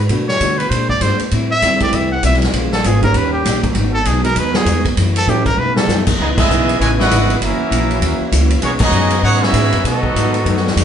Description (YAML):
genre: jazz, big band swing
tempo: 197 BPM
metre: 4/4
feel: swing 61% on 8ths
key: C# minor from 6.2 s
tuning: A4 = 441 Hz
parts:
  - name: upright bass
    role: bass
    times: 0.0-10.8 s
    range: F#1 to D3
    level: -18 LUFS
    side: equal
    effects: none
  - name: vintage hollow-body jazz guitar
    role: accompaniment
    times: 0.1-10.8 s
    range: F#2 to G4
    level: -22 LUFS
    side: left 1 dB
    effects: none
  - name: warm upright piano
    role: accompaniment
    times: 0.1-5.4 s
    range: D3 to A4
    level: -23 LUFS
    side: right 4 dB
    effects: none
  - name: swinging big-band drum kit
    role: drums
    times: 0.1-10.8 s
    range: crash cymbal, hi-hat, kick drum, ride cymbal, snare drum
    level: -19 LUFS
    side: equal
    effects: none
  - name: clear trumpet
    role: melody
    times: 0.3-6.0 s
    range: G4 to F#5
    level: -18 LUFS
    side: equal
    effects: none
  - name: brilliant trumpet section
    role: melody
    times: 6.2-10.7 s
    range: G#3 to G#5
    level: -19 LUFS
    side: right 2 dB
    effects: none
  - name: muted trombone section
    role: second line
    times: 6.2-10.7 s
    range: B2 to A4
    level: -22 LUFS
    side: right 1 dB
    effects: none
  - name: warm saxophone section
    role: sustained chords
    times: 6.2-10.8 s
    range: C#3 to A4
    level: -24 LUFS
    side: left 1 dB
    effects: none
room: moderate large studio reverb, RT60 1.0 s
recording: band playing live in one room, nothing above 10.7 kHz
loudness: -13 LUFS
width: side -8 dB against mid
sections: 0.0-6.2 A section; 6.2-10.8 B section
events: trumpet solo 0.0-6.2; drum fill 5.6-5.9; band accent 6.3, 8.8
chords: 0.1 Bm7; 0.7 A#6; 1.3 Am7; 2.5 A#m7; 3.1 D#7; 3.8 G#m7; 5.0 F#m7; 5.6 B7; 6.2 C#m9; 7.4 F#7; 8.6 B69; 9.8 B7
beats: | 0.11 0.41 0.71 1.02 | 1.32 1.63 1.93 2.24 | 2.54 2.84 3.15 3.45 | 3.76 4.06 4.37 4.67 | 4.97 5.28 5.58 5.88 | 6.19 6.49 6.80 7.10 | 7.41 7.71 8.02 8.32 | 8.62 8.93 9.23 9.54 | 9.85 10.15 10.46 10.76